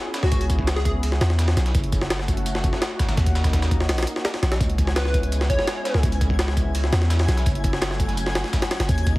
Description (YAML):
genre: drum and bass, jungle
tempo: 168 BPM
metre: 4/4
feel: straight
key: C# minor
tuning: A4 = 440 Hz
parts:
  - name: lush unison pad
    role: sustained chords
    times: 0.0-9.2 s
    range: F#3 to G#4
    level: -31 LUFS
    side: equal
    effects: chorus
  - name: dusty soul sampler-style drum kit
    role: drums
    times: 0.1-9.2 s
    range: hi-hat, snare drum, tambourine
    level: -34 LUFS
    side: equal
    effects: overdrive, high-pass filter on perc, studio reverb, high-pass filter on snare, high-pass filter on hats, high-pass filter on room
  - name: jungle sampler-style drum kit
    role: drums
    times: 0.1-9.2 s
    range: hi-hat, kick drum, snare drum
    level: -23 LUFS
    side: equal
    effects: studio reverb
  - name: plucky unison lead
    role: melody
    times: 0.2-0.9, 5.0-6.0 s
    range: F#4 to C#5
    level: -28 LUFS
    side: equal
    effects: dub echo
  - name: long sustained 808-style bass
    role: bass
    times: 0.2-9.2 s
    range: F#1 to E2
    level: -22 LUFS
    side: equal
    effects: none
  - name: twinkling granular texture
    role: texture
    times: 4.9-9.2 s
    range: G#5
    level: -35 LUFS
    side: left 2 dB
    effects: built-in reverb
room: light reverb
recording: heavily compressed radio sound, vinyl crackle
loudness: -19 LUFS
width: side -20 dB against mid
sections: 0.0-9.2 A section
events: none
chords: 0.0 C#m7; 1.7 F#m7; 3.2 D#m7; 4.6 C#m7; 7.5 F#m7